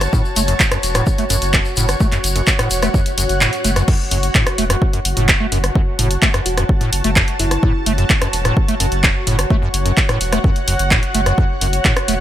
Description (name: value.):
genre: acid house.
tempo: 128 BPM.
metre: 4/4.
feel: straight.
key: F# minor.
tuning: A4 = 439 Hz.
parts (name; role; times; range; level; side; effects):
saturated sub bass; bass; 0.0-12.2 s; E1 to F#1; -20 LUFS; equal; sidechain pumping.
punchy analog drum machine; drums; 0.0-12.2 s; crash cymbal, handclaps, hi-hat, rim click; -18 LUFS; equal; none.
tube shaker; percussion; 0.0-3.9 s; none; -26 LUFS; left 3 dB; none.
granular cloud pad; texture; 0.0-12.2 s; F#4 to A5; -23 LUFS; equal; built-in reverb, sidechain pumping.
acid bass, square; riff; 0.1-12.1 s; F#2 to A3; -22 LUFS; equal; overdrive, analog chorus, sidechain pumping.
electronic kick drum; drums; 0.1-11.9 s; none; -16 LUFS; equal; none.
bell-like FM electric piano; melody; 6.5-8.1 s; E4 to F#4; -28 LUFS; equal; chorus, ping-pong delay.
room: light reverb.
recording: none.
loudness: -14 LUFS.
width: side -12 dB against mid.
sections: 0.0-3.9 A section; 3.9-12.2 B section.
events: filter sweep on acid bass 0.0-3.9; kick drops out 3.4-3.9; drop 3.9-12.2.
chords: 0.0 F#m.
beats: | 0.13 0.60 1.07 1.54 | 2.00 2.47 2.94 3.41 | 3.88 4.35 4.82 5.29 | 5.75 6.22 6.69 7.16 | 7.63 8.10 8.57 9.04 | 9.50 9.97 10.44 10.91 | 11.38 11.85.